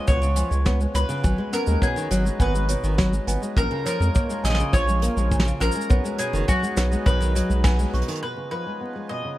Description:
folktronica; 103 BPM; 4/4; straight; Db mixolydian; A4 = 439 Hz
bowl-back mandolin; melody; 0.0-9.4 s; Gb4 to Eb5; -28 LUFS; equal; digital delay
small celesta; second line; 0.0-8.3 s; Db4 to Db6; -33 LUFS; right 1 dB; digital delay
pedal harmonium; sustained chords; 0.0-9.4 s; F3 to Ab4; -35 LUFS; equal
nylon-string guitar; arpeggios; 0.0-9.4 s; Bb2 to Cb4; -28 LUFS; left 1 dB; low-pass filter, digital delay
round analog bass; bass; 0.1-8.0 s; Gb1 to F2; -22 LUFS; equal
kick drum; drums; 0.1-7.8 s; -21 LUFS; equal
soft brush drum kit; drums; 0.1-9.4 s; cabasa, hi-hat, snare drum; -29 LUFS; right 1 dB; low-pass filter on hats, low-pass filter on snare, low-pass filter on perc, low-pass filter on room
small room ambience; vinyl crackle; -20 LUFS; side -15 dB against mid
0.0-8.2 A section; 8.2-9.4 B section
band accent 7.6; drum fill 7.9; filter sweep on nylon-string guitar 8.2-9.4
0.0 Db7; 1.2 Abm7; 3.6 Bbm7; 5.9 Cb6; 8.2 Db7

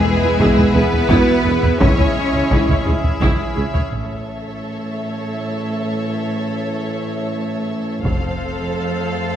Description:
cinematic, epic orchestral film score; 58 BPM (dotted quarters); 6/8; straight; A major; A4 = 440 Hz
warm symphonic violin section; melody; 0.0-9.4 s; G#4 to F5; -29 LUFS; left 4 dB
rich symphonic violin section; second line; 0.0-9.4 s; G#4 to C#5; -28 LUFS; left 3 dB
dark French horn section; sustained chords; 0.0-9.4 s; E3 to B4; -27 LUFS; left 1 dB
pipe organ, strings celeste; sustained chords; 0.0-3.9 s; B3 to E5; -25 LUFS; right 1 dB
warm trombone section; sustained chords; 0.0-3.6 s; E3 to B3; -25 LUFS; right 3 dB
clear symphonic cello section; bass; 0.0-9.4 s; F2 to C#4; -22 LUFS; right 1 dB
timpani; percussion; 0.0-0.7 s; E2; -26 LUFS; left 1 dB
clear symphonic viola section; accompaniment; 0.2-9.4 s; G#3 to C#5; -26 LUFS; right 1 dB
warm symphonic double bass section; bass; 0.2-4.6, 8.0-8.7 s; F1 to E2; -24 LUFS; right 2 dB
mellow tuba; bass; 0.4-3.6 s; E1 to C#2; -26 LUFS; right 3 dB
taiko ensemble; drums; 0.4-9.4 s; -19 LUFS; equal
moderate scoring stage reverb, RT60 1.7 s; -16 LUFS; side -10 dB against mid
0.0-3.9 A section; 3.9-9.4 B section
0.0 E; 1.8 C#m; 3.9 A; 8.0 F

